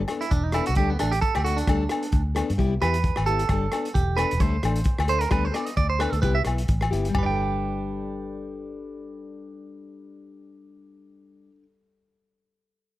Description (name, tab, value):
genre	highlife guitar band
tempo	131 BPM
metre	4/4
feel	swing 55% on 16ths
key	G major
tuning	A4 = 440 Hz
part	vintage muted fingered electric bass	bass	0.0-11.5 s	E1 to G2	-26 LUFS	equal	none
part	fingerpicked plugged-in steel-string acoustic guitar	accompaniment	0.1-11.7 s	G3 to A4	-30 LUFS	left 5 dB	none
part	crunchy breakbeat drum kit	drums	0.1-7.3 s	hi-hat, kick drum, rim click, toms	-27 LUFS	equal	none
part	agogo bells	percussion	0.1-7.3 s	none	-33 LUFS	left 5 dB	none
part	clean electric guitar	arpeggios	0.2-11.6 s	B3 to G5	-28 LUFS	right 5 dB	slapback echo
room	small room ambience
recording	none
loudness	-21 LUFS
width	side -15 dB against mid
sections	0.0-7.2 A section; 7.2-10.8 B section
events	clean electric guitar solo 0.0-7.2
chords	0.0 Gadd9 (rootless); 0.8 Dsus4; 1.7 Gadd9/D; 2.6 Cmaj7; 3.5 Gadd9; 4.4 Dsus4; 5.3 Gadd9/D; 6.2 Cmaj7; 7.2 Gadd9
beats	0.32 0.77 1.23 | 1.68 2.13 2.59 3.05 | 3.50 3.96 4.42 4.87 | 5.33 5.79 6.24 6.70 | 7.16 7.61 8.07 8.53 | 8.99 9.44 9.90 10.36